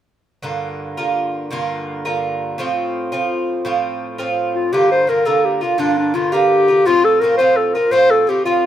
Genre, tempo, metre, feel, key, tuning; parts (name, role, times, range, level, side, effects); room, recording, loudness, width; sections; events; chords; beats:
celtic folk; 112 BPM (dotted quarters); 6/8; straight; G minor; A4 = 441 Hz
Irish bouzouki; accompaniment; 0.4-8.7 s; G2 to F4; -19 LUFS; right 3 dB
mellow clarinet; melody; 4.6-8.7 s; D4 to C5; -13 LUFS; left 1 dB
moderate small room reverb, RT60 0.5 s; -15 LUFS; side -11 dB against mid
0.4-4.7 A section; 4.7-8.7 B section
0.4 Gm7; 2.6 F; 4.7 Gm7; 6.9 F
| 0.43 0.97 | 1.51 2.04 | 2.58 3.12 | 3.65 4.19 | 4.73 5.26 | 5.79 6.33 | 6.86 7.39 | 7.92 8.45